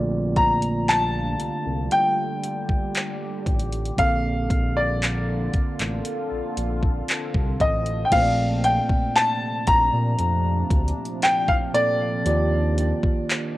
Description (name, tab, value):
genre	contemporary R&B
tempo	58 BPM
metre	4/4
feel	straight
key	unclear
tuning	A4 = 440 Hz
part	mellow tine electric piano	accompaniment	0.0-13.6 s	Bb2 to F5	-28 LUFS	right 2 dB	cassette tape
part	deep dark ambient pad	sustained chords	0.0-13.6 s	Bb2 to A4	-32 LUFS	left 1 dB	chorus, built-in reverb, cassette tape
part	smooth synth bass	bass	0.0-12.9 s	A1 to Bb2	-25 LUFS	equal	none
part	clear baby grand piano	melody	0.4-12.7 s	D5 to Bb5	-22 LUFS	left 1 dB	cassette tape, tape echo
part	smooth R&B drum kit	drums	0.4-13.5 s	crash cymbal, handclaps, hi-hat, kick drum	-24 LUFS	equal	none
room	light reverb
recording	home recording on cassette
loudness	-20 LUFS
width	side -16 dB against mid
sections	0.0-8.1 A section; 8.1-13.6 B section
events	none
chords	0.0 Gm7/Bb; 4.0 Bbmaj7; 8.1 Bbmaj9; 12.3 Ebmaj7